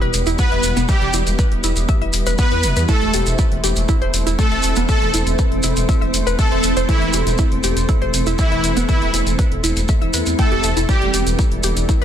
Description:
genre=melodic techno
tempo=120 BPM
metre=4/4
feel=straight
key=unclear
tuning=A4 = 435 Hz
part: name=dark analog pad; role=sustained chords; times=0.0-12.0 s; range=G3 to C5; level=-29 LUFS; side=left 1 dB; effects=chorus, sidechain pumping
part: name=warbly dusty pluck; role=arpeggios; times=0.0-12.0 s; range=B3 to G5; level=-25 LUFS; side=equal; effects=chorus, sidechain pumping, tape echo
part: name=dark detuned saw bass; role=bass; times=0.0-12.0 s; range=E1 to E2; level=-21 LUFS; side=equal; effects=sidechain pumping
part: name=electronic hi-hat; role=drums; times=0.0-12.0 s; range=none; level=-26 LUFS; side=left 4 dB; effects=overdrive
part: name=granular cloud pad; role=texture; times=0.0-12.0 s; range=B3 to A4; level=-26 LUFS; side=right 1 dB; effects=built-in reverb, sidechain pumping
part: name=shekere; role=percussion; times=0.1-12.0 s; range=none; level=-26 LUFS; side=right 2 dB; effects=none
part: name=soft supersaw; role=melody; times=0.4-11.1 s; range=E4 to B4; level=-24 LUFS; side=right 1 dB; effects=sidechain pumping, tape echo
part: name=big bright polysynth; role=second line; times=0.4-11.1 s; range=E3 to B3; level=-28 LUFS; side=left 2 dB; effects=lush chorus, sidechain pumping, tape echo
part: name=electronic kick drum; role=drums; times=0.4-12.0 s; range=none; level=-17 LUFS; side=equal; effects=none
part: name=swell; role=sound effects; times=10.0-10.9 s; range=none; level=-27 LUFS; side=left 4 dB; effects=none
room=light reverb, digital ambience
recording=dense, heavily limited modern master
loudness=-15 LUFS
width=side -9 dB against mid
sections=0.0-12.0 A section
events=swell 10.0-10.9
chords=0.0 Em; 2.9 Am/E; 10.9 Em

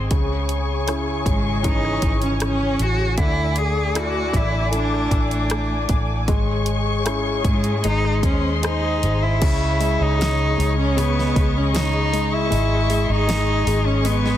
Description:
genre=pop ballad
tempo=78 BPM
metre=4/4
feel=straight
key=C# harmonic minor, C# minor from 9.4 s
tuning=A4 = 440 Hz
part: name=warm concert grand piano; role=accompaniment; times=0.0-14.4 s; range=C#3 to B#4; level=-26 LUFS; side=left 2 dB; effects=none
part: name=dark studio string section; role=sustained chords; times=0.0-14.4 s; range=A3 to D6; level=-27 LUFS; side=left 3 dB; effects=none
part: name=vintage muted fingered electric bass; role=bass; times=0.0-14.4 s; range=G#1 to G#2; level=-22 LUFS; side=equal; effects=none
part: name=pop drum kit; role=drums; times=0.1-14.3 s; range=crash cymbal, hi-hat, kick drum, rim click, snare drum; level=-24 LUFS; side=equal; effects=soft clipping on snare
part: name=rich cello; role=melody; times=1.3-14.4 s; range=G#3 to G#4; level=-24 LUFS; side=right 1 dB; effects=none
room=light reverb, small room ambience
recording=dense, heavily limited modern master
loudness=-18 LUFS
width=side -11 dB against mid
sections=0.0-9.4 A section; 9.4-14.4 B section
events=none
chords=0.1 C#m; 3.2 Dsus2; 6.3 C#m/G#; 7.8 G#; 9.4 C#sus2; 12.5 G#sus4

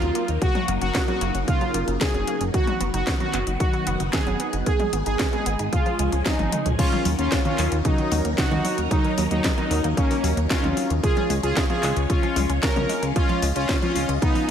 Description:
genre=italo disco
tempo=113 BPM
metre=4/4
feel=straight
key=Eb minor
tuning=A4 = 440 Hz
part: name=analog synth brass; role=melody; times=0.0-14.5 s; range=Gb3 to Bb4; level=-26 LUFS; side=equal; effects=chorus, ping-pong delay
part: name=phased string machine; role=sustained chords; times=0.0-14.5 s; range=Db3 to Eb5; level=-29 LUFS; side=equal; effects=ensemble chorus, phaser
part: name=wide unison pluck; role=arpeggios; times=0.0-14.4 s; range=Db3 to Eb4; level=-31 LUFS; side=right 4 dB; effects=digital delay
part: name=chorused synth bass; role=bass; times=0.0-14.2 s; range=Gb1 to Eb2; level=-25 LUFS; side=equal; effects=none
part: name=house drum kit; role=drums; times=0.0-14.5 s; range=crash cymbal, handclaps, hi-hat, snare drum, toms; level=-28 LUFS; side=left 1 dB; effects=gated reverb
part: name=electronic kick drum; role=drums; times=0.4-14.3 s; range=none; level=-24 LUFS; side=equal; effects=none
room=light reverb, digital ambience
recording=none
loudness=-20 LUFS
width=side -8 dB against mid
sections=0.0-6.8 A section; 6.8-14.5 B section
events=drum fill 6.3-6.8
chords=0.4 Gb; 2.5 B/F#; 4.7 Abm; 5.7 Db; 6.8 Ebm7; 11.0 Db

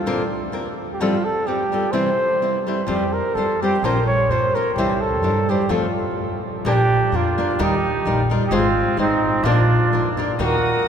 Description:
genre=mexican folk, mariachi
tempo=128 BPM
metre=2/4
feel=swing 53% on 8ths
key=F major, Bb major from 6.7 s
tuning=A4 = 440 Hz
part: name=dark trumpet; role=melody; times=0.0-10.9 s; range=Eb4 to Db5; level=-21 LUFS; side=right 1 dB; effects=none
part: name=Celtic harp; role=arpeggios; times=0.0-1.6 s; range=C4 to E4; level=-37 LUFS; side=left 1 dB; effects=none
part: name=nylon-string guitar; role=accompaniment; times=0.1-10.6 s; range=A2 to C5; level=-23 LUFS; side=left 1 dB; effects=none
part: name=upright bass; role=bass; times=2.9-10.7 s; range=Ab1 to G2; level=-23 LUFS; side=equal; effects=none
part: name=mellow trumpet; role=second line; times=6.7-10.9 s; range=C4 to Gb4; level=-25 LUFS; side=right 4 dB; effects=none
part: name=dark studio violin section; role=sustained chords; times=10.4-10.9 s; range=Bb3 to Eb6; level=-28 LUFS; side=left 3 dB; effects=none
room=wet cathedral reverb, RT60 7.3 s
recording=recorded in a church or concert hall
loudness=-17 LUFS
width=side -8 dB against mid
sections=0.0-6.7 A section; 6.7-10.9 B section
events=stop 6.2-6.7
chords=0.1 Bbadd9; 1.0 Fadd9/A; 1.9 C; 2.9 Fsus2; 3.8 Bbmadd9; 4.8 Cadd9; 5.7 F; 6.7 Bb; 7.6 Ebadd9; 8.5 Ab; 9.4 Bb

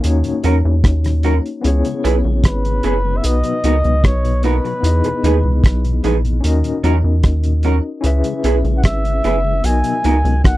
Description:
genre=lovers rock reggae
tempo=75 BPM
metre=4/4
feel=straight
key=unclear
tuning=A4 = 439 Hz
part: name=barky tine electric piano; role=accompaniment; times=0.0-10.6 s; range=A#3 to E5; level=-23 LUFS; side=left 4 dB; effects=overdrive, fast tremolo
part: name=rubbery square bass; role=bass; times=0.0-10.6 s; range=F#1 to E2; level=-16 LUFS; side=equal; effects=none
part: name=cloth-damped thuddy drum kit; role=drums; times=0.0-10.6 s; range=hi-hat, kick drum, rim click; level=-16 LUFS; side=equal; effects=none
part: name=mellow tonewheel organ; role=accompaniment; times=0.2-10.3 s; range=D#2 to E4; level=-26 LUFS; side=left 8 dB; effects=slow rotary speaker, slapback echo
part: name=electric guitar through a small old amp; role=stabs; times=0.4-10.2 s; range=C#4 to B4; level=-18 LUFS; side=right 5 dB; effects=none
part: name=breathy flugelhorn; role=melody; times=2.5-10.6 s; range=B4 to G#5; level=-21 LUFS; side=equal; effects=tape echo
room=little or no reverb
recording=dry, close 1970s-style studio recording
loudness=-14 LUFS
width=side -16 dB against mid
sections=0.0-10.6 A section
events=none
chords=0.0 D#m7; 1.6 C#m7; 3.2 Bmaj7; 4.8 Emaj7; 6.4 D#m7; 8.0 C#m7; 9.6 Bmaj7

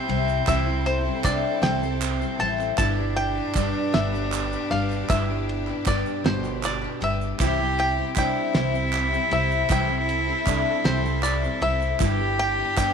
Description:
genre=indie folk with a building arrangement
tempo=52 BPM (dotted quarters)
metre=6/8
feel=straight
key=C major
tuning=A4 = 440 Hz
part: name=bluegrass banjo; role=melody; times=0.0-12.9 s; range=C5 to A5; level=-28 LUFS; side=left 1 dB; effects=none
part: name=warm cello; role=second line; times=0.0-12.9 s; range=C4 to G4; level=-28 LUFS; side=equal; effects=none
part: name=picked twelve-string acoustic guitar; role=accompaniment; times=0.0-12.9 s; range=C3 to C5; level=-29 LUFS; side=left 16 dB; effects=none
part: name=warm symphonic string section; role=sustained chords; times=0.0-12.9 s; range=B2 to A4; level=-36 LUFS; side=equal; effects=none
part: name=warm upright piano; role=arpeggios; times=0.0-12.9 s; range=B2 to E4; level=-32 LUFS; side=right 14 dB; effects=none
part: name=upright bass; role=bass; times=0.1-12.9 s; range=G1 to C2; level=-28 LUFS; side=right 1 dB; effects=none
part: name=cloth-damped thuddy drum kit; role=drums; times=0.1-12.9 s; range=kick drum, ride cymbal, snare drum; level=-26 LUFS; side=right 1 dB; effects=none
part: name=group handclap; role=percussion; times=0.3-12.9 s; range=none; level=-35 LUFS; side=right 15 dB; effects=none
part: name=tube shaker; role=percussion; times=0.3-12.9 s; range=none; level=-42 LUFS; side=right 21 dB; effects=none
room=light reverb, studio reverb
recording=1960s-style stereo with parts hard left and right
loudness=-21 LUFS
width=side -6 dB against mid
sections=0.0-12.9 A section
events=none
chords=0.0 C; 2.8 G; 7.4 C; 12.0 G

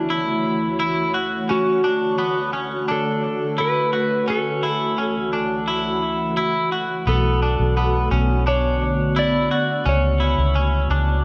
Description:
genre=dream pop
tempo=86 BPM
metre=4/4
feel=straight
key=F# minor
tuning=A4 = 440 Hz
part: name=clean lap steel guitar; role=melody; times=0.0-11.2 s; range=E4 to D5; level=-27 LUFS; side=equal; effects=analog delay
part: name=ethereal airy pad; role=sustained chords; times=0.0-11.2 s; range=C#2 to C#5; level=-27 LUFS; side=equal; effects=ensemble chorus, built-in reverb
part: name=semi-hollow electric guitar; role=arpeggios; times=0.0-11.2 s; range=B3 to F#4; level=-26 LUFS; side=equal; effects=lush chorus, analog delay
part: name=vintage muted fingered electric bass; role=bass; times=7.1-11.2 s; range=B1 to C#2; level=-22 LUFS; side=equal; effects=none
room=moderate echo chamber reverb, RT60 2.0 s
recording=echo-heavy mix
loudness=-21 LUFS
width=mono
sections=0.0-11.2 A section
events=none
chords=0.0 F#m7/C#; 1.5 Dmaj7; 4.3 F#m7/C#; 7.1 Bm7; 9.9 F#m7/C#

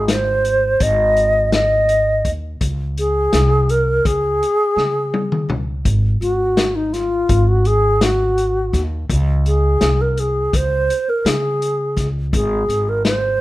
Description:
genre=progressive instrumental, band music in an uneven meter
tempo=167 BPM (eighths)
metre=9/8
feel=straight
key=Ab mixolydian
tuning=A4 = 440 Hz
part: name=alto flute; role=melody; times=0.0-13.4 s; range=Eb4 to Eb5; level=-17 LUFS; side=equal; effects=none
part: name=upright bass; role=bass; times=0.0-13.4 s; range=Ab1 to Db3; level=-19 LUFS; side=equal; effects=none
part: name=vintage drum kit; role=drums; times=0.1-13.2 s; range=hi-hat, kick drum, snare drum, toms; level=-21 LUFS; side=left 2 dB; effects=none
room=light reverb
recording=minimal, uncompressed stereo recording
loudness=-15 LUFS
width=side -17 dB against mid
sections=0.0-13.4 A section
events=drum fill 4.8-5.9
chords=0.0 Ab; 2.6 Db5; 5.9 Ab5; 9.1 Db5; 12.3 Ab

